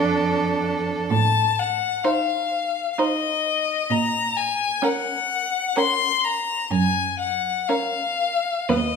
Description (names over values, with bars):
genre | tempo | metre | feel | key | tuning
classical, slow romantic movement for string quartet | 58-66 BPM | 3/4 | rubato | Bb minor | A4 = 437 Hz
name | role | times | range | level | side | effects
clear violin | second line | 0.0-9.0 s | A4 to C5 | -27 LUFS | right 1 dB | none
rich viola | accompaniment | 0.0-9.0 s | B3 to Eb4 | -27 LUFS | right 4 dB | none
clear cello | bass | 0.0-9.0 s | D#2 to Bb2 | -24 LUFS | right 4 dB | none
clear violin | melody | 1.1-9.0 s | Eb5 to C6 | -22 LUFS | left 7 dB | none
room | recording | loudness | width
wet recital hall reverb, RT60 1.4 s | minimal, uncompressed stereo recording | -20 LUFS | side -5 dB against mid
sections
0.0-9.0 A section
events
none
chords
0.0 Dm/F; 1.1 F7/A; 3.9 Bbm; 6.7 Gb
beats
0.14 | 1.10 2.04 2.98 | 3.89 4.83 5.76 | 6.71 7.69 8.69